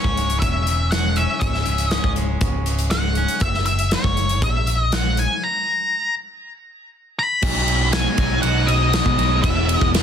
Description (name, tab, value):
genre	quiet-loud alternative rock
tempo	120 BPM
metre	4/4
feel	straight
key	B major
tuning	A4 = 440 Hz
part	octave-fuzz lead guitar	melody	0.0-9.9 s	C#5 to B5	-22 LUFS	left 2 dB	distortion
part	clean electric guitar	arpeggios	0.0-3.4 s	C#2 to C#4	-30 LUFS	equal	none
part	picked electric bass	bass	0.0-10.0 s	C#1 to B2	-22 LUFS	equal	none
part	big rock drum kit	drums	0.0-10.0 s	crash cymbal, hi-hat, kick drum, ride cymbal, snare drum	-22 LUFS	equal	none
part	fuzz guitar	riff	7.4-10.0 s	B1 to E4	-23 LUFS	right 1 dB	distortion
room	studio ambience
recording	dense, heavily limited modern master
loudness	-17 LUFS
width	side -8 dB against mid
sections	0.0-7.4 A section; 7.4-10.0 B section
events	break 5.4-7.4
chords	0.0 C#m; 3.4 F#; 7.4 B6; 9.4 E